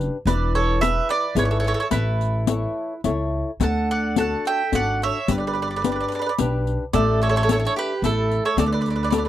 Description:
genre	italian folk, Italian serenade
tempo	108 BPM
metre	3/4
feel	rubato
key	D major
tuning	A4 = 440 Hz
part	flamenco guitar	accompaniment	0.0-9.3 s	D3 to C#5	-26 LUFS	left 3 dB	none
part	upright bass	bass	0.0-9.3 s	E1 to D2	-24 LUFS	equal	none
part	riq	percussion	0.0-9.3 s	none	-25 LUFS	left 10 dB	none
part	mandolin	melody	0.3-9.3 s	A4 to A5	-25 LUFS	right 4 dB	none
part	mandolin	second line	0.3-9.3 s	E4 to F#5	-28 LUFS	right 4 dB	none
room	little or no reverb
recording	dry, close 1970s-style studio recording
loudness	-19 LUFS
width	side -12 dB against mid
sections	0.0-9.3 A section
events	none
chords	0.3 E; 1.9 A; 3.6 D; 5.3 G; 6.9 Asus4; 8.0 A5; 8.6 D

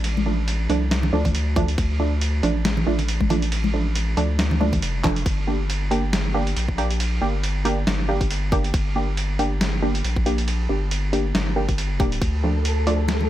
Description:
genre	deep dubstep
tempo	138 BPM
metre	4/4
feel	swing 56% on 16ths, half-time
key	G minor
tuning	A4 = 440 Hz
part	saturated sub bass	bass	0.0-13.3 s	F1 to D2	-23 LUFS	equal	none
part	trip hop sampler-style drum kit	drums	0.0-13.2 s	handclaps, hi-hat, ride cymbal, snare drum	-28 LUFS	right 1 dB	none
part	congas	percussion	0.2-5.1, 13.1-13.3 s	none	-29 LUFS	left 3 dB	dub echo
part	filtered dub chord stab	stabs	0.3-13.0 s	F3 to G4	-26 LUFS	right 2 dB	chorus, dub echo
part	electronic kick drum	drums	1.2-12.3 s	none	-23 LUFS	equal	overdrive
part	flickering grainy texture	texture	12.5-13.3 s	A4	-29 LUFS	right 1 dB	built-in reverb
room	little or no reverb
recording	none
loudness	-20 LUFS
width	side -13 dB against mid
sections	0.0-5.3 A section; 5.3-13.3 A section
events	drop 0.0-5.3, 5.3-13.3; drum fill 5.0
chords	0.0 Dm; 5.3 Gm; 12.2 Dm

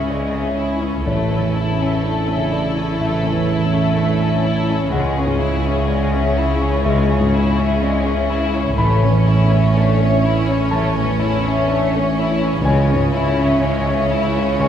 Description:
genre	cinematic, emotional film score for orchestra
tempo	62 BPM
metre	4/4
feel	rubato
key	A major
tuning	A4 = 440 Hz
part	dark studio violin section	melody	0.0-14.7 s	G#4 to C#5	-26 LUFS	left 5 dB	none
part	warm studio violin section	second line	0.0-14.7 s	G#3 to E4	-24 LUFS	left 3 dB	none
part	dark grand piano	accompaniment	0.0-14.7 s	A1 to C#6	-20 LUFS	right 1 dB	none
part	warm studio viola section	accompaniment	0.0-14.7 s	C#4 to E4	-26 LUFS	right 2 dB	none
part	concert harp	arpeggios	0.0-14.7 s	A2 to C#6	-24 LUFS	left 2 dB	none
part	warm studio cello section	bass	0.0-14.7 s	A2 to C#3	-25 LUFS	right 3 dB	none
part	warm studio double bass section	bass	0.0-14.7 s	A1 to C#2	-22 LUFS	right 1 dB	none
room	wet scoring stage reverb, RT60 1.5 s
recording	heard from further back in the room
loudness	-15 LUFS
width	side -9 dB against mid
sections	0.0-14.7 A section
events	none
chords	0.0 C#m; 1.1 A; 4.9 C#m; 8.8 A; 12.6 C#m

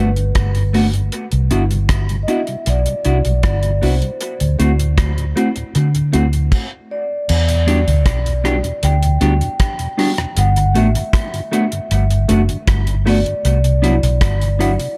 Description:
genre	lovers rock reggae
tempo	78 BPM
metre	4/4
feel	straight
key	E minor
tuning	A4 = 438 Hz
part	vibraphone with soft mallets	melody	0.0-15.0 s	B4 to G5	-26 LUFS	equal	tape echo
part	mellow tonewheel organ	accompaniment	0.0-14.9 s	D2 to F#4	-30 LUFS	equal	none
part	tine electric piano	accompaniment	0.0-14.7 s	F#3 to F#4	-26 LUFS	equal	lush chorus
part	clean electric guitar	stabs	0.0-14.8 s	A3 to G4	-24 LUFS	equal	dub echo
part	vintage muted fingered electric bass	bass	0.0-14.8 s	F#1 to D3	-18 LUFS	equal	none
part	damped 70s drum kit	drums	0.2-15.0 s	crash cymbal, hi-hat, kick drum, rim click	-22 LUFS	equal	gated reverb, dub echo
room	small room ambience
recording	none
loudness	-16 LUFS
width	mono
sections	0.0-7.3 A section; 7.3-15.0 B section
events	stop 6.5-7.3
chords	0.0 Gmaj9; 1.1 Cmaj9#11; 4.2 D7; 7.3 Em7; 10.4 Gmaj9; 13.4 Cmaj9#11

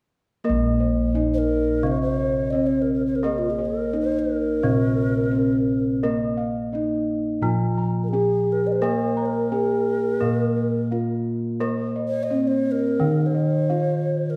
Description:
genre	Javanese gamelan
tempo	86 BPM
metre	4/4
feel	straight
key	Bb slendro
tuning	A4 = 440 Hz
part	gamelan-type bronze metallophone	melody	0.4-14.4 s	Bb3 to Bb4	-26 LUFS	equal	none
part	gamelan-type bronze metallophone	accompaniment	0.4-14.4 s	C3+40c to Bb3	-29 LUFS	equal	none
part	gamelan-type bossed gongs	bass	0.4-14.4 s	Bb1 to Bb4	-30 LUFS	equal	none
part	gamelan-type bossed gongs	arpeggios	0.5-14.1 s	Bb4 to Bb5	-34 LUFS	equal	none
part	breathy mellow round clay ocarina	second line	1.3-14.4 s	F4+20c to Eb5	-29 LUFS	equal	none
room	wet recital hall reverb, RT60 1.5 s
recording	recorded in a church or concert hall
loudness	-22 LUFS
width	mono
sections	0.4-14.4 A section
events	none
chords	none

